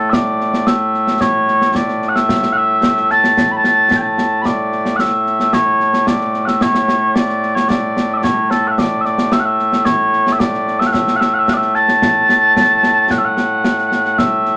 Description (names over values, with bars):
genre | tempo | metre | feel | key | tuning
scottish traditional, Scottish pipe music | 111 BPM | 4/4 | straight | A major | A4 = 440 Hz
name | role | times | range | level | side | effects
mellow small bagpipes | melody | 0.0-14.6 s | A2 to B5 | -16 LUFS | equal | none
concert snare drum and concert bass drum | drums | 0.1-14.5 s | none | -22 LUFS | equal | none
room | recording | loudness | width
wet studio reverb, RT60 0.6 s | none | -15 LUFS | mono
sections
0.0-4.5 A section; 4.5-13.1 A section; 13.1-14.6 B section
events
none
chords
none